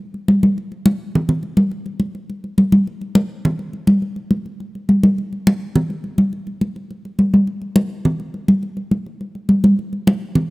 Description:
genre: latin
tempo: 208 BPM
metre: 4/4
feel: straight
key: none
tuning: none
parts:
  - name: congas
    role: percussion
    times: 0.1-10.5 s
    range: none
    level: -16 LUFS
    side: equal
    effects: none
room: light reverb, small room ambience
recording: rough home demo mix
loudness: -16 LUFS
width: side -22 dB against mid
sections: 0.0-5.2 A section; 5.2-10.5 B section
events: none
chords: none

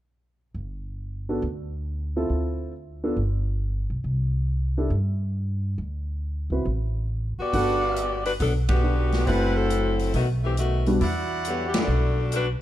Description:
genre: jazz, big band swing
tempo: 138 BPM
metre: 4/4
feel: swing 67% on 8ths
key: G major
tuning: A4 = 440 Hz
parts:
  - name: upright bass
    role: bass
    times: 0.5-12.6 s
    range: F#1 to G2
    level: -26 LUFS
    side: equal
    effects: none
  - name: dark baby grand piano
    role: accompaniment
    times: 1.3-11.0 s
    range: G3 to B4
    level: -28 LUFS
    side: equal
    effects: none
  - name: bright saxophone section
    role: melody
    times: 7.4-12.5 s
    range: D3 to D5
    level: -26 LUFS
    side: left 3 dB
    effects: none
  - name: brilliant trumpet section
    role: stabs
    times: 7.5-12.2 s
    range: D4 to F#5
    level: -32 LUFS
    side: right 3 dB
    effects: none
  - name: swinging big-band drum kit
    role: drums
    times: 7.5-12.4 s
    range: hi-hat, kick drum, ride cymbal, snare drum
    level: -30 LUFS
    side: equal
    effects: none
room: light reverb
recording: dark, warm production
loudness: -23 LUFS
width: side -13 dB against mid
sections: 0.5-7.5 A section; 7.5-12.6 B section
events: band accent 8.6, 11.7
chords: 0.5 Gsus2; 2.3 Dm9; 3.2 G; 4.0 C5; 5.8 D5; 7.5 Gmaj7; 9.3 F#m7b5; 10.1 B7; 11.0 Em9

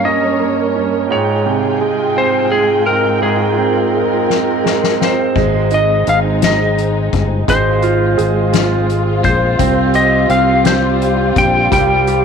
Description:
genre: six-eight pop ballad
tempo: 57 BPM (dotted quarters)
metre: 6/8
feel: straight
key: F minor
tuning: A4 = 441 Hz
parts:
  - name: clean lap steel guitar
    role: melody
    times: 0.0-12.2 s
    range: Ab4 to G5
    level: -16 LUFS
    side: left 2 dB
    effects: none
  - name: bright concert grand piano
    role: accompaniment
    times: 0.0-12.2 s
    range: G2 to Ab4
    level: -17 LUFS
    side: right 13 dB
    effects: none
  - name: dark studio string section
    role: sustained chords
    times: 0.0-12.2 s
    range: G2 to G5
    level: -18 LUFS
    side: left 3 dB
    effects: none
  - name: soft-mallet drum kit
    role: drums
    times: 4.3-12.2 s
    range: crash cymbal, hi-hat, kick drum, snare drum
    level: -19 LUFS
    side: left 6 dB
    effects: none
  - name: fingered electric bass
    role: bass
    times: 5.4-12.2 s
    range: G1 to C2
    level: -17 LUFS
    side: left 2 dB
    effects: none
room: light reverb, small room ambience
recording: 1960s-style stereo with parts hard left and right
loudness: -12 LUFS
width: side -6 dB against mid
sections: 0.0-5.4 A section; 5.4-12.2 B section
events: drum fill 4.3-5.4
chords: 0.0 Gdim; 1.1 Fmadd9/Ab; 5.4 Ab; 7.5 Fm/Ab; 9.6 Csus4

